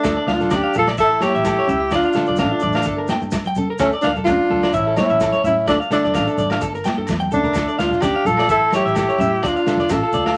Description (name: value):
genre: highlife guitar band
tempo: 128 BPM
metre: 4/4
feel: swing 54% on 16ths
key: D harmonic minor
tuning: A4 = 440 Hz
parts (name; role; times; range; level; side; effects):
- breathy tenor saxophone; melody; 0.0-10.4 s; C#4 to A4; -21 LUFS; equal; none
- mellow alto saxophone; second line; 0.0-10.4 s; A3 to F4; -28 LUFS; equal; none
- nylon-string guitar; accompaniment; 0.0-10.3 s; E3 to A4; -29 LUFS; equal; none
- electric guitar at the edge of break-up; arpeggios; 0.0-10.4 s; F4 to G5; -26 LUFS; equal; none
- vintage muted fingered electric bass; bass; 0.0-10.4 s; G1 to D3; -30 LUFS; equal; none
- crunchy breakbeat drum kit; drums; 0.0-10.4 s; kick drum, snare drum; -29 LUFS; equal; none
- agogo bells; percussion; 0.0-10.4 s; none; -36 LUFS; equal; none
- maracas; percussion; 0.0-10.2 s; none; -45 LUFS; equal; none
- congas; percussion; 0.4-10.2 s; none; -31 LUFS; equal; none
room: moderate studio reverb, RT60 0.6 s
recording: vinyl crackle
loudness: -18 LUFS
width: mono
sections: 0.0-10.4 A section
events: drum fill 7.1-7.6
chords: 0.0 Dm; 1.0 A; 1.9 Dm; 2.9 Gmadd9; 3.8 Dm; 4.7 A; 5.7 Dm; 6.6 Gmadd9; 7.6 Dm; 8.5 A; 9.4 Dm